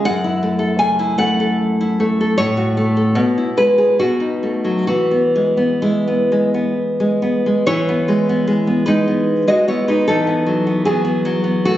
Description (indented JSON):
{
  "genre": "romantic piece for solo classical guitar",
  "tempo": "62-81 BPM",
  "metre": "3/4",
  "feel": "rubato",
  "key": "E major",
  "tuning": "A4 = 440 Hz",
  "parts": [
    { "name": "nylon-string guitar", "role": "solo", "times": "0.0-11.8 s", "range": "F#2 to G#5", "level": "-14 LUFS", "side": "equal", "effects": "none" }
  ],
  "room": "moderate scoring stage reverb, RT60 1.7 s",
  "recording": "recorded on a phone in the room, studio reverb, nothing above 7.8 kHz",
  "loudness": "-14 LUFS",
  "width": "side -13 dB against mid",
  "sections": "0.0-7.7 A section; 7.7-11.8 A section",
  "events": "none",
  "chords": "0.1 F#m7; 2.4 F#m/A; 3.2 E/B; 4.0 B7; 4.9 E; 10.1 B7/E"
}